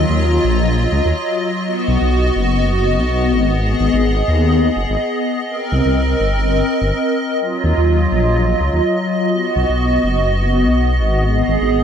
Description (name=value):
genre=IDM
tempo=125 BPM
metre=4/4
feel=swing 56% on 16ths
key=unclear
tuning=A4 = 443 Hz
part: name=hollow soft pad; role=sustained chords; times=0.0-11.8 s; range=Gb3 to Eb5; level=-16 LUFS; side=left 1 dB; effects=ensemble chorus
part: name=dark detuned saw bass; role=bass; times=0.0-11.8 s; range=F#1 to Eb2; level=-16 LUFS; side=equal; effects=transformer saturation
room=light reverb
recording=dry, gritty hardware recording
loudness=-14 LUFS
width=side -8 dB against mid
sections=0.0-11.8 A section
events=none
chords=0.0 Ebmadd9; 1.6 B; 5.5 Cm7; 7.4 Ebmadd9; 9.3 B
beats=0.20 0.68 1.16 | 1.64 2.12 2.60 3.08 | 3.56 4.04 4.52 5.00 | 5.48 5.96 6.44 6.92 | 7.40 7.88 8.36 8.84 | 9.32 9.80 10.28 10.76 | 11.24 11.72